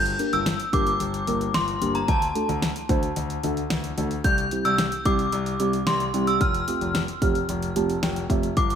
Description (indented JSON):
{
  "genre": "synth-pop",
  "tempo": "111 BPM",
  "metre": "4/4",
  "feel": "straight",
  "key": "unclear",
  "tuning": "A4 = 440 Hz",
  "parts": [
    { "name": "synth chime", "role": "melody", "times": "0.0-8.8 s", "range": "A5 to G6", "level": "-26 LUFS", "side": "equal", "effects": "ensemble chorus, tremolo, ping-pong delay" },
    { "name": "warm concert grand piano", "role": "bass", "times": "0.0-8.8 s", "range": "F1 to D2", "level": "-28 LUFS", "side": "left 2 dB", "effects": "none" },
    { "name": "pop drum kit", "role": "drums", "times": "0.1-8.8 s", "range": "hi-hat, kick drum, snare drum", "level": "-27 LUFS", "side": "equal", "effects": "none" },
    { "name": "muted felt-like synth keys", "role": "accompaniment", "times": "0.2-8.6 s", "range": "G3 to A5", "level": "-28 LUFS", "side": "right 2 dB", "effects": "chorus" }
  ],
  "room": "moderate echo chamber reverb, RT60 2.4 s",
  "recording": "none",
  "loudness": "-21 LUFS",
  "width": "side -8 dB against mid",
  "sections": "0.0-8.8 A section",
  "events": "synth keys fill 7.5-8.6",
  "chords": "0.0 Gm; 2.1 D; 4.2 C; 6.4 Fadd9"
}